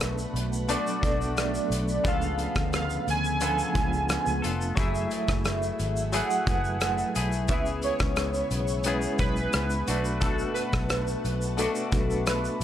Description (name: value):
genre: indie pop, bedroom pop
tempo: 88 BPM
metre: 4/4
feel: straight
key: unclear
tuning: A4 = 441 Hz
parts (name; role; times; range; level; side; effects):
- warbly lo-fi synth keys; melody; 0.0-12.6 s; A4 to G#5; -30 LUFS; right 2 dB; phaser, ensemble chorus, tape echo
- direct-recorded clean electric guitar; accompaniment; 0.0-12.6 s; B2 to A4; -33 LUFS; left 5 dB; lush chorus, vibrato effect
- reed electric piano; accompaniment; 0.0-12.6 s; E#3 to B4; -34 LUFS; right 3 dB; fast tremolo, cassette tape
- string machine, cellos; sustained chords; 0.0-12.6 s; A3 to E6; -39 LUFS; right 1 dB; ensemble chorus
- vintage muted fingered electric bass; bass; 0.0-12.6 s; E#1 to D2; -31 LUFS; equal; tube saturation
- loose indie drum kit; drums; 0.0-12.6 s; hi-hat, kick drum, rim click, shaker; -30 LUFS; equal; none
room: light reverb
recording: none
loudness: -24 LUFS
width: side -11 dB against mid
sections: 0.0-12.6 A section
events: none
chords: 0.0 Bm7; 2.0 C#7b9b13; 4.8 F#m9; 7.5 C#m7; 9.9 Bm7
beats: 0.00 0.69 1.37 | 2.05 2.73 3.41 4.09 | 4.78 5.46 6.14 6.82 | 7.50 8.18 8.87 9.55 | 10.23 10.91 11.59 12.27